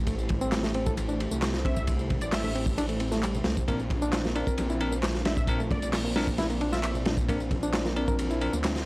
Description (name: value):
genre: breakbeat, breaks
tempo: 133 BPM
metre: 4/4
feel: straight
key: unclear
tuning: A4 = 440 Hz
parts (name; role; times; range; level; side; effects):
- dark analog pad; sustained chords; 0.0-8.9 s; A3 to C5; -37 LUFS; equal; chorus, vintage 12-bit sampler grit, sidechain pumping
- detuned saw bass; bass; 0.0-8.9 s; A1 to D2; -31 LUFS; equal; none
- bright reed electric piano; riff; 0.1-8.6 s; G3 to Bb4; -32 LUFS; equal; overdrive, tube saturation
- crunchy breakbeat drum kit; drums; 0.1-8.9 s; hi-hat, kick drum, ride cymbal, snare drum; -29 LUFS; equal; none
- electronic tambourine and handclaps; drums; 0.1-8.8 s; none; -38 LUFS; equal; none
- congas; percussion; 0.3-8.6 s; none; -40 LUFS; equal; none
- glassy wavetable pluck; melody; 1.7-2.5, 5.3-6.9 s; D5 to E5; -38 LUFS; equal; chorus, telephone sound, analog delay
- bell-like tine electric piano; stabs; 3.7-8.5 s; C4 to Bb4; -32 LUFS; left 1 dB; vintage 12-bit sampler grit, analog delay
room: small room ambience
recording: dry, gritty hardware recording, transformer saturation, vinyl crackle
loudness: -25 LUFS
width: side -23 dB against mid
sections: 0.0-8.9 A section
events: none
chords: 0.0 Am7; 3.7 Bbadd9